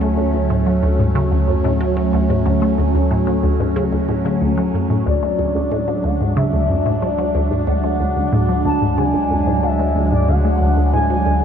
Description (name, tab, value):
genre	ambient, sequencer-driven space music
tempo	92 BPM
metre	4/4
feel	straight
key	D lydian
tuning	A4 = 437 Hz
part	phased analog pad	sustained chords	0.0-11.4 s	F#3 to D4	-20 LUFS	right 1 dB	phaser, chorus
part	resonant blip pluck	riff	0.0-11.4 s	D2 to A3	-19 LUFS	equal	phaser, cassette tape, ping-pong delay
part	round analog bass	bass	0.0-11.4 s	D2	-22 LUFS	equal	none
part	expressive synth lead	melody	5.1-11.4 s	D5 to A5	-22 LUFS	left 2 dB	lush chorus, ping-pong delay
room	wet huge ambient reverb, RT60 7.1 s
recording	dark, warm production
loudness	-15 LUFS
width	side -8 dB against mid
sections	0.0-11.4 A section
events	none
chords	0.0 D